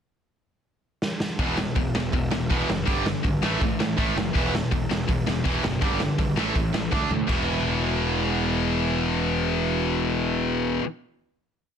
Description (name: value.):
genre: punk rock.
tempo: 163 BPM.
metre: 4/4.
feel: straight.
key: unclear.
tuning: A4 = 437 Hz.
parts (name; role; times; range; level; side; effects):
raw garage drum kit; drums; 1.0-7.4 s; crash cymbal, hi-hat, kick drum, snare drum, toms; -26 LUFS; equal; none.
distorted electric guitar; riff; 1.4-10.9 s; E2 to D4; -28 LUFS; right 12 dB; overdrive.
tight distorted guitar; riff; 1.4-10.9 s; E2 to D4; -27 LUFS; left 12 dB; distortion.
fuzz picked electric bass; bass; 1.4-10.8 s; E1 to A2; -29 LUFS; equal; overdrive.
room: little or no reverb.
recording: dense, heavily limited modern master.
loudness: -22 LUFS.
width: side -8 dB against mid.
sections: 0.0-1.4 pickup bar; 1.4-7.3 verse; 7.3-10.2 final chord.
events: drum fill 1.0-1.4, 6.9-7.3.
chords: 0.0 N.C.; 1.4 E5; 2.9 G5; 3.4 A5; 4.4 E5; 5.8 G5; 6.4 A5; 6.9 D5; 7.3 E5.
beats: 0.28 0.65 1.02 | 1.40 1.77 2.14 2.51 | 2.88 3.25 3.62 3.98 | 4.35 4.72 5.09 5.46 | 5.83 6.19 6.56 6.92 | 7.29 7.66 8.03 8.39 | 8.76 9.13 9.50 9.86.